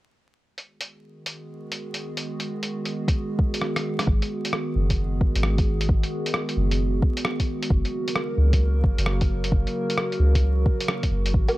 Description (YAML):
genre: future garage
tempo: 132 BPM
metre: 4/4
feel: swing 65% on 16ths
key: G# minor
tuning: A4 = 440 Hz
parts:
  - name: warbly tape-like pad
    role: sustained chords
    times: 1.3-11.6 s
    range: C#3 to B4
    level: -29 LUFS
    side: right 1 dB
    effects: chorus, built-in reverb, sidechain pumping
  - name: lo-fi sampler-style drum kit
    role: drums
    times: 0.6-11.6 s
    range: hi-hat, rim click, woodblock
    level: -28 LUFS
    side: equal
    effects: vintage 12-bit sampler grit
  - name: electronic kick drum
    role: drums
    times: 3.1-11.5 s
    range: none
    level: -22 LUFS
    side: equal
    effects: vintage 12-bit sampler grit
  - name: soft 808-style bass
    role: bass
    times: 4.1-11.5 s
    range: F#1 to C#2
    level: -22 LUFS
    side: equal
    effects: tube saturation, sidechain pumping
room: little or no reverb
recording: dry, gritty hardware recording, vinyl crackle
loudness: -21 LUFS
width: side -17 dB against mid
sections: 0.4-4.1 A section; 4.1-11.6 B section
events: fade-in on ambient pad 0.4-4.1; drum fill 3.6-4.1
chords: 0.4 G#m7; 7.7 F#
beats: | 0.44 0.89 1.34 1.80 | 2.25 2.71 3.16 3.62 | 4.07 4.53 4.98 5.44 | 5.89 6.34 6.80 7.25 | 7.71 8.16 8.62 9.07 | 9.53 9.98 10.44 10.89 | 11.35